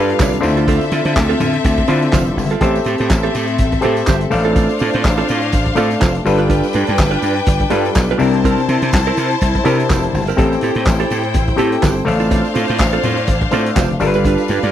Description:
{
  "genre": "disco",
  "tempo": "124 BPM",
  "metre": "4/4",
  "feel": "swing 56% on 16ths",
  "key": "D minor",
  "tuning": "A4 = 440 Hz",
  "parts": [
    { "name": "rich studio string section", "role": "second line", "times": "0.0-14.7 s", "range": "C4 to A5", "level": "-20 LUFS", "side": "left 3 dB", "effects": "none" },
    { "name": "auto-wah clav", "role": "accompaniment", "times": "0.0-14.7 s", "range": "C3 to F5", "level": "-18 LUFS", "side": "left 3 dB", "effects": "overdrive, tube saturation" },
    { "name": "direct-recorded clean electric guitar", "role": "accompaniment", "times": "0.0-14.7 s", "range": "C4 to D5", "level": "-21 LUFS", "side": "right 9 dB", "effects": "none" },
    { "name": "slap bass", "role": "bass", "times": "0.0-14.7 s", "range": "F1 to D3", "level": "-19 LUFS", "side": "equal", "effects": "none" },
    { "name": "warm soul drum kit", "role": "drums", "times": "0.1-14.7 s", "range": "handclaps, hi-hat, kick drum, snare drum", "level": "-18 LUFS", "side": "equal", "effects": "none" },
    { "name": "congas", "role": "percussion", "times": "0.2-2.5, 10.4-14.6 s", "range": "none", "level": "-27 LUFS", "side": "left 6 dB", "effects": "none" },
    { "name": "tambourine", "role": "percussion", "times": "0.2-14.7 s", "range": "none", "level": "-36 LUFS", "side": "right 20 dB", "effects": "none" }
  ],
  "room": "small room ambience",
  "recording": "dry, close 1970s-style studio recording",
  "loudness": "-13 LUFS",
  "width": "side -11 dB against mid",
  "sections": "0.0-2.6 A section; 2.6-14.7 A section",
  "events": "none",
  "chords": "0.4 Dm7; 2.6 Am7; 4.3 Dm7/A; 6.3 G7; 8.2 C7; 10.4 Am7; 12.1 Dm7/A; 14.0 G7"
}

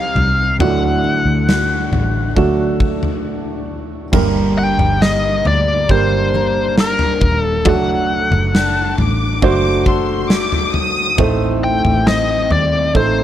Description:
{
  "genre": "pop ballad",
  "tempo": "68 BPM",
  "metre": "4/4",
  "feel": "straight",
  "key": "G harmonic minor from 4.1 s",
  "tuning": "A4 = 440 Hz",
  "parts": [
    { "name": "biting lead guitar", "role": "melody", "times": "0.0-13.2 s", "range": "Bb4 to G5", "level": "-18 LUFS", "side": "left 2 dB", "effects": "overdrive" },
    { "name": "warm upright piano", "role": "accompaniment", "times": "0.0-13.2 s", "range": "G2 to C5", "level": "-20 LUFS", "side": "right 7 dB", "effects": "none" },
    { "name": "fingerpicked steel-string acoustic guitar", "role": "arpeggios", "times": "0.0-13.2 s", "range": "G2 to Bb4", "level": "-24 LUFS", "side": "left 10 dB", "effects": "none" },
    { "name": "vintage muted fingered electric bass", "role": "bass", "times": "0.0-13.2 s", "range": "Eb1 to Eb2", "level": "-20 LUFS", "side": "equal", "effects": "none" },
    { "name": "huge arena drum kit", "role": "drums", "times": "0.2-13.2 s", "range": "crash cymbal, kick drum, snare drum, toms", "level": "-20 LUFS", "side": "equal", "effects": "none" },
    { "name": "warm symphonic violin section", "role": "second line", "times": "8.5-11.4 s", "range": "A5 to Eb6", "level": "-21 LUFS", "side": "left 2 dB", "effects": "none" }
  ],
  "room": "studio reverb",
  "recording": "none",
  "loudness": "-13 LUFS",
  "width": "side -11 dB against mid",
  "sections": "0.0-4.1 A section; 4.1-13.2 B section",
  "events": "break 3.2-4.1",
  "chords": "0.0 Cm; 0.6 D; 4.1 Gm; 7.7 D/F#; 11.2 Adim"
}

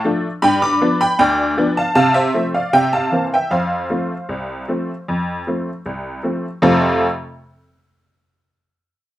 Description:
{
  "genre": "ragtime piano",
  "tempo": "78 BPM",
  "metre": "2/4",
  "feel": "straight",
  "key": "F major",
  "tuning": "A4 = 441 Hz",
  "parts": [
    { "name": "honky-tonk upright piano", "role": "solo", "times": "0.0-7.1 s", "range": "C2 to D6", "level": "-16 LUFS", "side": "equal", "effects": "none" }
  ],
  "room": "little or no reverb",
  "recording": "close, detailed microphones",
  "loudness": "-15 LUFS",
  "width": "side -14 dB against mid",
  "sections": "0.0-6.6 A section; 6.6-8.2 B section",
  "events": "none",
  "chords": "0.4 G7; 2.0 F/C; 2.7 C7; 3.5 F"
}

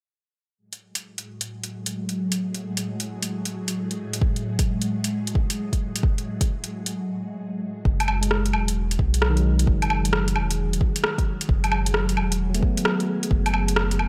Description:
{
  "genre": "future garage",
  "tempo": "132 BPM",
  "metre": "4/4",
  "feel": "swing 65% on 16ths",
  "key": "F# dorian",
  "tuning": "A4 = 440 Hz",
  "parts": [
    { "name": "ethereal airy pad", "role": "sustained chords", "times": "1.3-14.1 s", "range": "A2 to G#4", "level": "-32 LUFS", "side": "equal", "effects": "ensemble chorus, built-in reverb, phaser, sidechain pumping" },
    { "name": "deep house drum kit", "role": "drums", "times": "0.7-14.1 s", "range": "hi-hat, rim click, woodblock", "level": "-28 LUFS", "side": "equal", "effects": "overdrive" },
    { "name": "electronic kick drum", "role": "drums", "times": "4.2-13.4 s", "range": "none", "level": "-25 LUFS", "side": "equal", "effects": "overdrive" },
    { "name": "soft dub sub bass", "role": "bass", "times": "7.9-14.1 s", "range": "E1 to B1", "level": "-26 LUFS", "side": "equal", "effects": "sidechain pumping" },
    { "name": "tine electric piano", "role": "accompaniment", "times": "8.2-14.1 s", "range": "D#3 to B3", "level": "-31 LUFS", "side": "equal", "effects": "sidechain pumping, low-pass filter, tape echo" }
  ],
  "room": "light reverb",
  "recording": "none",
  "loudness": "-24 LUFS",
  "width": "mono",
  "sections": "0.6-7.9 A section; 7.9-14.1 B section",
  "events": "break 6.9-7.9; filter sweep on tine electric piano 7.9-14.1",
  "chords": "0.6 F#madd9"
}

